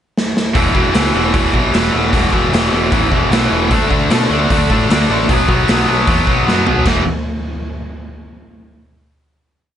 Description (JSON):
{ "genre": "punk rock", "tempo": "152 BPM", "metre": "4/4", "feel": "straight", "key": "unclear", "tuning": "A4 = 439 Hz", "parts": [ { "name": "raw garage drum kit", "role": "drums", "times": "0.2-7.0 s", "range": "crash cymbal, hi-hat, kick drum, snare drum, toms", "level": "-16 LUFS", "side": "equal", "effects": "none" }, { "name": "tight distorted guitar", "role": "riff", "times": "0.5-7.0 s", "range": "E2 to D4", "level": "-14 LUFS", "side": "left 1 dB", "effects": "distortion" }, { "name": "growling picked electric bass", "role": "bass", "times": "0.6-7.0 s", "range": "E1 to B2", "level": "-20 LUFS", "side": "equal", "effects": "overdrive" } ], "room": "little or no reverb", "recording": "nothing above 10.7 kHz", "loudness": "-12 LUFS", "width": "side -10 dB against mid", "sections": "0.0-0.6 pickup bar; 0.6-6.9 verse; 6.9-8.4 final chord", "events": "drum fill 0.2-0.6, 6.5-6.9", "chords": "0.0 N.C.; 0.6 E5; 3.7 D5; 5.3 B5; 6.9 E5" }